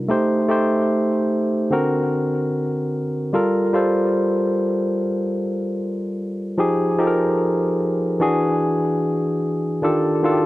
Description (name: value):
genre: soul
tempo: 74 BPM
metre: 4/4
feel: straight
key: unclear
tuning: A4 = 440 Hz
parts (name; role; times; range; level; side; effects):
- barky tine electric piano; solo; 0.0-10.5 s; D3 to C5; -18 LUFS; equal; overdrive, tape echo
room: light reverb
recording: dry, close 1970s-style studio recording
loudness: -18 LUFS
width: side -17 dB against mid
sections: 0.0-10.5 A section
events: none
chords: 0.1 Am7b5; 1.7 D7b13; 3.3 Gm9; 6.6 Fm9; 8.2 E9; 9.8 Ebmaj9#11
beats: | 0.10 0.91 1.72 2.53 | 3.35 4.16 4.97 5.78 | 6.59 7.40 8.21 9.03 | 9.84